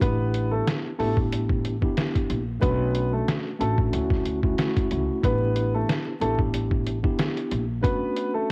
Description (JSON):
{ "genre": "hip hop, boom-bap hip-hop", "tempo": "92 BPM", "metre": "4/4", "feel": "swing 55% on 16ths", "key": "unclear", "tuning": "A4 = 440 Hz", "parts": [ { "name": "warm upright piano", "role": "melody", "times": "0.0-8.5 s", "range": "A3 to B4", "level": "-31 LUFS", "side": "equal", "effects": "cassette tape, analog delay" }, { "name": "mellow tine electric piano", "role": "accompaniment", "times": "0.0-8.5 s", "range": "A3 to G4", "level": "-31 LUFS", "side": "equal", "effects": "cassette tape" }, { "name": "upright bass", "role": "bass", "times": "0.0-7.8 s", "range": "A1 to D2", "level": "-30 LUFS", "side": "equal", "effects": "none" }, { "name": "trip hop sampler-style drum kit", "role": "drums", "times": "0.0-8.3 s", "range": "hi-hat, kick drum, snare drum", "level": "-28 LUFS", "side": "equal", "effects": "cassette tape" } ], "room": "studio reverb", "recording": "home recording on cassette, vinyl crackle", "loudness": "-25 LUFS", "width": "mono", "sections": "0.0-8.5 A section", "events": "none", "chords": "0.0 A9sus4; 2.6 Bm9; 3.9 Dmaj9; 5.2 A9sus4; 7.8 Bm9" }